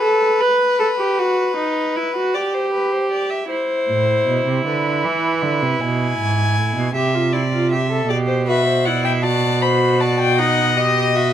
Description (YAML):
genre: classical, baroque-style fugue for string quartet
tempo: 52 BPM (dotted quarters)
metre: 6/8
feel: straight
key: A minor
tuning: A4 = 440 Hz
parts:
  - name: rich violin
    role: second line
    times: 0.0-11.3 s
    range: B4 to G#5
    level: -21 LUFS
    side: left 3 dB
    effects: none
  - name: warm viola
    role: accompaniment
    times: 0.0-11.3 s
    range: D#4 to B4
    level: -20 LUFS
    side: right 1 dB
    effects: none
  - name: rich cello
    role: bass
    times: 3.9-11.3 s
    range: G#2 to E3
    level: -20 LUFS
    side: right 4 dB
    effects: none
  - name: warm violin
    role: melody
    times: 8.5-11.3 s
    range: D#5 to B5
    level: -20 LUFS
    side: left 5 dB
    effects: none
room: moderate stone room reverb, RT60 1.3 s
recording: none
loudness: -16 LUFS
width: side -10 dB against mid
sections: 0.0-3.5 A section; 3.5-11.3 B section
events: none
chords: 0.0 Gadd9; 1.2 Badd11; 2.3 N.C.; 3.5 Am; 4.7 Cmaj9; 5.8 Eadd11; 7.0 Am/C; 8.1 Em/B; 9.2 F#dim; 10.4 B